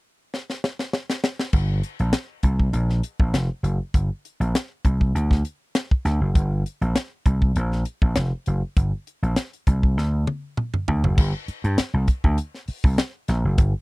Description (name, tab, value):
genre	funk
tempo	100 BPM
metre	4/4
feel	straight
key	unclear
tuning	A4 = 439 Hz
part	tight funk drum kit	drums	0.3-13.7 s	crash cymbal, hi-hat, kick drum, snare drum, toms	-21 LUFS	equal	none
part	vintage slap bass	bass	1.5-13.7 s	F1 to G2	-21 LUFS	equal	none
room	little or no reverb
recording	dry, close 1970s-style studio recording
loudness	-20 LUFS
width	side -23 dB against mid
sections	0.0-1.5 A section; 1.5-11.2 B section; 11.2-13.8 C section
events	drum fill 0.3-1.5, 10.0-11.2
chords	none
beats	0.33 0.93 | 1.53 2.13 2.74 3.34 | 3.94 4.54 5.15 5.75 | 6.35 6.96 7.56 8.16 | 8.76 9.37 9.97 10.57 | 11.18 11.78 12.38 12.98 | 13.58